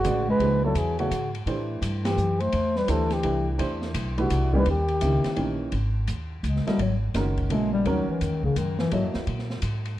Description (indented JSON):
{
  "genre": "modal jazz",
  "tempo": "169 BPM",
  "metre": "3/4",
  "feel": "swing 64% on 8ths",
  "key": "unclear",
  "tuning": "A4 = 444 Hz",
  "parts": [
    { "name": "trumpet with bucket mute", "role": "melody", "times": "0.0-5.6 s", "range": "F#4 to C5", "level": "-27 LUFS", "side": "equal", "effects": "none" },
    { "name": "mellow bass clarinet", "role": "second line", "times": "0.0-9.1 s", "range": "C3 to A3", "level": "-28 LUFS", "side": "left 2 dB", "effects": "none" },
    { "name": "dark baby grand piano", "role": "accompaniment", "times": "0.0-9.9 s", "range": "C#3 to D#5", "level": "-30 LUFS", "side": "right 3 dB", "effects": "none" },
    { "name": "upright bass", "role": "bass", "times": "0.0-10.0 s", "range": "F#1 to A#2", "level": "-27 LUFS", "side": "equal", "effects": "none" },
    { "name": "open jazz drum kit", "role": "drums", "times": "0.0-9.9 s", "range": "hi-hat, kick drum, ride cymbal, snare drum", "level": "-36 LUFS", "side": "equal", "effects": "none" }
  ],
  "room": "light reverb",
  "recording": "dark, warm production",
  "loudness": "-23 LUFS",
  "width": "side -14 dB against mid",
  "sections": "0.0-5.7 A section; 5.7-10.0 B section",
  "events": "band accent 2.0; bass clarinet solo 5.7-10.0",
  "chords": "0.0 F#m9; 1.5 Am9; 4.7 D#7b9; 5.7 G#9sus4",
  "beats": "0.04 | 0.40 0.76 1.11 | 1.47 1.82 2.18 | 2.53 2.89 3.24 | 3.60 3.95 4.31 | 4.66 5.02 5.37 | 5.73 6.08 6.44 | 6.79 7.15 7.50 | 7.86 8.21 8.57 | 8.93 9.28 9.63"
}